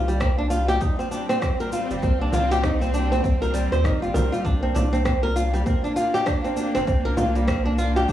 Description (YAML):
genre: organic downtempo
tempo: 99 BPM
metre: 4/4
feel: swing 60% on 16ths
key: unclear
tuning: A4 = 438 Hz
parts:
  - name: bowed-like drone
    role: sustained chords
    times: 0.0-8.1 s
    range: G3 to D4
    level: -30 LUFS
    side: equal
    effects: built-in reverb, sidechain pumping, cassette tape
  - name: flamenco guitar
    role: arpeggios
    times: 0.0-8.1 s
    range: G3 to C5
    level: -23 LUFS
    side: equal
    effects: cassette tape, tape echo
  - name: warm sub bass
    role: bass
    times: 0.0-8.1 s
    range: G1 to Eb2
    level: -24 LUFS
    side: equal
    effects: none
  - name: electronic shaker and rim click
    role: drums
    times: 0.1-8.1 s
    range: none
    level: -34 LUFS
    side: left 1 dB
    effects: cassette tape
  - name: electronic kick drum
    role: drums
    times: 0.2-8.1 s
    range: none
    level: -24 LUFS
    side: equal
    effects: cassette tape
  - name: frame drum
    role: percussion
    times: 2.3-7.3 s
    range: none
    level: -28 LUFS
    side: right 1 dB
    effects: none
room: light reverb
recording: home recording on cassette, studio reverb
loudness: -20 LUFS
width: side -12 dB against mid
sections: 0.0-8.1 A section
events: none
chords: 0.0 Gsus4; 4.5 Gm7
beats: 0.21 0.81 1.42 | 2.03 2.63 3.24 3.85 | 4.45 5.06 5.66 6.27 | 6.88 7.48 8.09